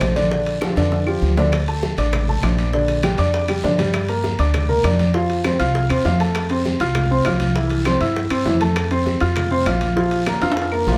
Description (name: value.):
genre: latin, salsa.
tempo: 199 BPM.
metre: 4/4.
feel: straight.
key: Bb major.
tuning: A4 = 440 Hz.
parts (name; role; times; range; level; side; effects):
dark baby grand piano; accompaniment; 0.0-11.0 s; D3 to F6; -22 LUFS; equal; none.
upright bass; bass; 0.0-11.0 s; A1 to G2; -24 LUFS; equal; none.
bongos; percussion; 0.0-11.0 s; none; -34 LUFS; equal; none.
claves; percussion; 0.0-10.9 s; none; -36 LUFS; equal; none.
congas; percussion; 0.0-11.0 s; none; -28 LUFS; equal; none.
guiro; percussion; 0.0-11.0 s; none; -37 LUFS; equal; none.
timbales; percussion; 0.0-11.0 s; none; -31 LUFS; equal; none.
room: wet studio reverb, RT60 0.7 s.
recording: heard from further back in the room.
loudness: -19 LUFS.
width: mono.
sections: 0.0-1.5 A section; 1.5-11.0 B section.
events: drum fill 0.6-1.5, 10.4-11.0.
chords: 0.3 Bb6; 1.5 D5; 2.7 Bb6; 3.9 Gm; 5.1 F; 7.6 C; 8.8 F; 10.0 Bb5.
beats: 0.01 | 0.31 0.62 0.92 1.22 | 1.52 1.83 2.13 2.43 | 2.73 3.04 3.34 3.64 | 3.94 4.24 4.54 4.84 | 5.15 5.45 5.75 6.05 | 6.35 6.65 6.95 7.25 | 7.55 7.86 8.16 8.46 | 8.76 9.06 9.36 9.66 | 9.96 10.27 10.57 10.87.